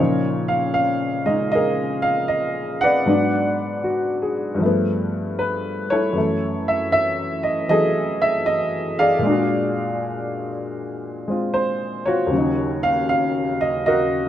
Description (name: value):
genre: solo jazz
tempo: 78 BPM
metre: 4/4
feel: swing 67% on 8ths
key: unclear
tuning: A4 = 440 Hz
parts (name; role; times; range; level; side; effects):
- warm upright piano; solo; 0.0-14.3 s; Eb2 to Gb5; -18 LUFS; equal; none
room: light reverb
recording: minimal, uncompressed stereo recording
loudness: -18 LUFS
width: side -11 dB against mid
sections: 0.0-14.3 A section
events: none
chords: 0.0 Db69; 3.1 Abm7b5; 4.6 G9; 6.2 Gbm9; 9.2 Bb7b13; 12.3 Ebm9